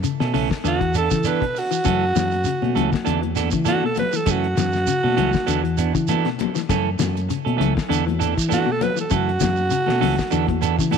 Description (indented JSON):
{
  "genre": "afrobeat",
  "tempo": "99 BPM",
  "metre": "4/4",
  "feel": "swing 55% on 16ths",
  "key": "F# minor",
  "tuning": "A4 = 440 Hz",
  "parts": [
    { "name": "clean electric guitar", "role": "arpeggios", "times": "0.0-11.0 s", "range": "B2 to E3", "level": "-27 LUFS", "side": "left 12 dB", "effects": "none" },
    { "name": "clean electric guitar", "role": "stabs", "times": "0.0-11.0 s", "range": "E3 to A4", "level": "-25 LUFS", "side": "right 13 dB", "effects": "tape echo" },
    { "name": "damped 70s drum kit", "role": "drums", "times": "0.0-11.0 s", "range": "hi-hat, kick drum, snare drum", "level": "-27 LUFS", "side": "left 4 dB", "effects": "none" },
    { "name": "shekere", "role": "percussion", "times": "0.0-11.0 s", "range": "none", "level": "-29 LUFS", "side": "right 6 dB", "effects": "none" },
    { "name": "fingered electric bass", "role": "bass", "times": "0.2-11.0 s", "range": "B1 to E3", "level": "-23 LUFS", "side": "equal", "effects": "none" },
    { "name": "raspy alto saxophone", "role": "melody", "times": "0.7-10.9 s", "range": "F#4 to B4", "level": "-23 LUFS", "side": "right 2 dB", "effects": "none" },
    { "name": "congas", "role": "percussion", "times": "1.9-11.0 s", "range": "none", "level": "-28 LUFS", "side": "left 14 dB", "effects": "none" }
  ],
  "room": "light reverb, small room ambience",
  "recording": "1960s-style stereo with parts hard left and right",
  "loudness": "-18 LUFS",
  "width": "side -6 dB against mid",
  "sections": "0.0-11.0 A section",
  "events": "alto saxophone solo 0.0-11.0",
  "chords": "0.0 F#m7 (rootless); 0.6 E7sus4; 1.8 F#m7; 3.1 E7sus4; 4.3 F#m7; 5.5 E7sus4; 6.7 F#m7; 7.9 E7sus4; 9.1 F#m7; 10.3 E7sus4",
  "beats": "0.03 0.64 1.24 | 1.85 2.46 3.06 3.67 | 4.27 4.88 5.48 6.09 | 6.69 7.30 7.90 8.51 | 9.11 9.71 10.32 10.92"
}